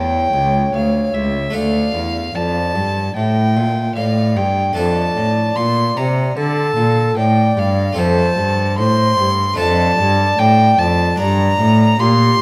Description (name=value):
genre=classical, baroque-style sonata movement with continuo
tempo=75 BPM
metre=4/4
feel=straight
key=D minor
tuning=A4 = 439 Hz
part: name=baroque flute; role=melody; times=0.0-12.4 s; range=G4 to E5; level=-25 LUFS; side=equal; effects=none
part: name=rich violin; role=second line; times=0.0-12.4 s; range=E5 to C6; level=-21 LUFS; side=equal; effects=none
part: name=harpsichord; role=accompaniment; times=0.0-12.4 s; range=C#2 to D5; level=-27 LUFS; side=equal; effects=none
part: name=rich cello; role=bass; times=0.0-12.4 s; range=C#2 to D3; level=-19 LUFS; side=equal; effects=none
room=moderate recital hall reverb, RT60 1.7 s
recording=none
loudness=-16 LUFS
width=mono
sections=0.0-12.4 A section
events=none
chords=0.0 A; 1.6 Dm; 4.8 Dm/F; 8.0 F; 9.6 Dm/F; 11.2 Gm